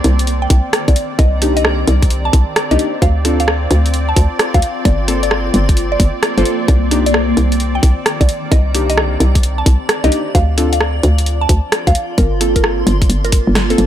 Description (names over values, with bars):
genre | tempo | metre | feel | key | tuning
UK garage, two-step garage | 131 BPM | 4/4 | swing 65% on 16ths | C dorian | A4 = 437 Hz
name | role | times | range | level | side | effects
warm analog pad | sustained chords | 0.0-13.9 s | C4 to D5 | -26 LUFS | left 1 dB | chorus, sidechain pumping
hollow knocking FM bass | bass | 0.0-13.9 s | G1 to D2 | -14 LUFS | equal | none
punchy analog drum machine | drums | 0.0-13.9 s | hi-hat, rim click, snare drum | -19 LUFS | equal | none
granular cloud pad | texture | 0.0-13.9 s | Eb3 to C6 | -24 LUFS | equal | built-in reverb, lush chorus, sidechain pumping
mallet-like synth pluck | melody | 0.4-13.9 s | A4 to A5 | -22 LUFS | equal | chorus, phaser, tape echo
electronic kick drum | drums | 0.5-13.4 s | none | -13 LUFS | equal | none
deep mellow chord stab | stabs | 1.4-13.9 s | Bb3 to A4 | -21 LUFS | left 1 dB | chorus, ping-pong delay
room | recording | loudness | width
little or no reverb | none | -12 LUFS | side -11 dB against mid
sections
0.0-13.9 A section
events
drum fill 13.6-13.9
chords
0.0 Cm9; 3.0 Dm7; 4.9 Gm11; 6.7 Cm9; 10.3 Dm7; 12.2 Gm11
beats
0.27 0.73 | 1.19 1.65 2.10 2.56 | 3.02 3.48 3.94 4.39 | 4.85 5.31 5.77 6.23 | 6.68 7.14 7.60 8.06 | 8.52 8.97 9.43 9.89 | 10.35 10.81 11.26 11.72 | 12.18 12.64 13.10 13.55